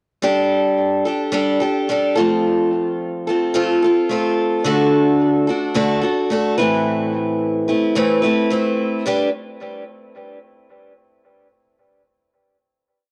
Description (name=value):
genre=rock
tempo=109 BPM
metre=4/4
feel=straight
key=G major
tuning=A4 = 438 Hz
part: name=picked steel-string acoustic guitar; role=solo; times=0.2-9.3 s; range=A2 to B4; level=-18 LUFS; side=equal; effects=cassette tape, analog delay
room=moderate spring reverb, RT60 1.4 s, studio ambience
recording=home recording on cassette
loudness=-18 LUFS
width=mono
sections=0.2-9.1 verse; 9.1-11.2 final chord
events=none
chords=0.2 Gsus2; 2.2 F; 4.7 D; 6.6 Amadd9; 9.1 G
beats=| 0.23 0.78 1.34 1.89 | 2.44 3.00 3.55 4.10 | 4.66 5.21 5.76 6.32 | 6.87 7.42 7.97 8.52 | 9.06